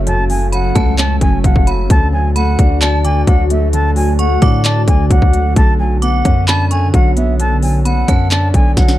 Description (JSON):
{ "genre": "hip hop, trap", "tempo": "131 BPM", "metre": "4/4", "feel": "half-time", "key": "unclear", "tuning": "A4 = 436 Hz", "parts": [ { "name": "warm concert grand piano", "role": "accompaniment", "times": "0.0-9.0 s", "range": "F#2 to D5", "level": "-20 LUFS", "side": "equal", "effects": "none" }, { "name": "glassy FM pad", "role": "sustained chords", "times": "0.0-9.0 s", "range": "D3 to A4", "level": "-22 LUFS", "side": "equal", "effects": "ensemble chorus, built-in reverb" }, { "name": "long sustained 808-style bass", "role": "bass", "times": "0.0-9.0 s", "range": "F#1 to A2", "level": "-15 LUFS", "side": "equal", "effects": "none" }, { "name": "mellow silver concert flute", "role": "melody", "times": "0.1-9.0 s", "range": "E5 to A5", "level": "-20 LUFS", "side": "equal", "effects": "none" }, { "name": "trap drum kit", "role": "drums", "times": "0.1-9.0 s", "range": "handclaps, hi-hat, kick drum, snare drum", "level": "-13 LUFS", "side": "equal", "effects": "none" }, { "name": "metallic FM bell", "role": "second line", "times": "0.5-9.0 s", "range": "A5 to D6", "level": "-26 LUFS", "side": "right 3 dB", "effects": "chorus, ping-pong delay" } ], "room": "little or no reverb", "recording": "dark, warm production", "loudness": "-11 LUFS", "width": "side -14 dB against mid", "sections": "0.0-9.0 A section", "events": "drum fill 8.8", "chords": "0.0 F#m; 1.9 D; 5.6 Bmadd9" }